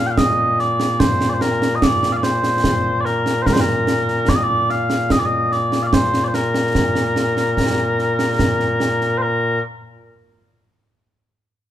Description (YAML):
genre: scottish traditional, Scottish pipe music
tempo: 73 BPM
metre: 3/4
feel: straight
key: Bb major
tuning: A4 = 437 Hz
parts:
  - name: mellow small bagpipes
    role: melody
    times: 0.0-9.6 s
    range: Bb2 to G5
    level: -18 LUFS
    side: left 1 dB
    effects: none
  - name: concert snare drum and concert bass drum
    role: drums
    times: 0.2-9.1 s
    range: none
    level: -20 LUFS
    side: right 1 dB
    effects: none
room: moderate large studio reverb, RT60 1.3 s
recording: band playing live in one room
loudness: -16 LUFS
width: side -11 dB against mid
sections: 0.0-9.2 A section; 9.2-11.7 B section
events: none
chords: none